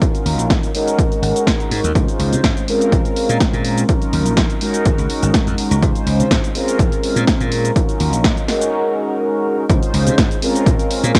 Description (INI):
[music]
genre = filtered disco house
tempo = 124 BPM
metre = 4/4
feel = swing 53% on 16ths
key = Db major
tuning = A4 = 440 Hz
[part]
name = mellow synth brass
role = accompaniment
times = 0.0-11.2 s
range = Gb3 to C5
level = -21 LUFS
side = equal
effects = chorus, phaser, sidechain pumping, low-pass filter, cassette tape
[part]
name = electronic kick drum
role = drums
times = 0.0-11.2 s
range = none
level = -20 LUFS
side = equal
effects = cassette tape
[part]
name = punchy analog drum machine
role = drums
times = 0.0-11.2 s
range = hi-hat, shaker, snare drum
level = -24 LUFS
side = equal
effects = cassette tape
[part]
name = slap bass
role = bass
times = 0.3-11.1 s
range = Ab1 to Db3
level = -21 LUFS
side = equal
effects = tube saturation, sidechain pumping, low-pass filter
[sound]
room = moderate spring reverb, RT60 2.4 s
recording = home recording on cassette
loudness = -17 LUFS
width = mono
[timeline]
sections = 0.0-9.7 A section; 9.7-11.2 B section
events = drop 9.7-11.2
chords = 0.0 Ebm9; 0.7 Ab7sus4; 2.0 Dbmaj9; 2.7 Bbm7; 3.9 Ebm9; 4.6 Ab7sus4; 5.8 Dbmaj9; 6.6 Bbm7; 7.8 Ebm9; 8.5 Ab7sus4; 9.7 Dbmaj9; 10.4 Bbm7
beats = | 0.02 0.50 0.99 1.47 | 1.96 2.44 2.92 3.41 | 3.89 4.37 4.86 5.34 | 5.83 6.31 6.79 7.28 | 7.76 8.24 8.73 9.21 | 9.70 10.18 10.66 11.15